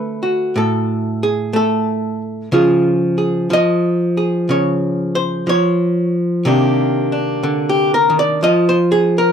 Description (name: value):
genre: solo jazz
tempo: 61 BPM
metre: 4/4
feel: swing 67% on 8ths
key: unclear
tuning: A4 = 440 Hz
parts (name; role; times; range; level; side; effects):
- archtop guitar, miked and amplified; solo; 0.0-9.3 s; A2 to Eb5; -14 LUFS; equal; none
room: light reverb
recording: dry, close 1970s-style studio recording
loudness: -14 LUFS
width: side -7 dB against mid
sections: 0.0-9.3 A section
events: hollow-body jazz guitar solo 0.0-9.3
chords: 0.0 D6; 2.5 Db; 6.5 Cm9; 8.4 F5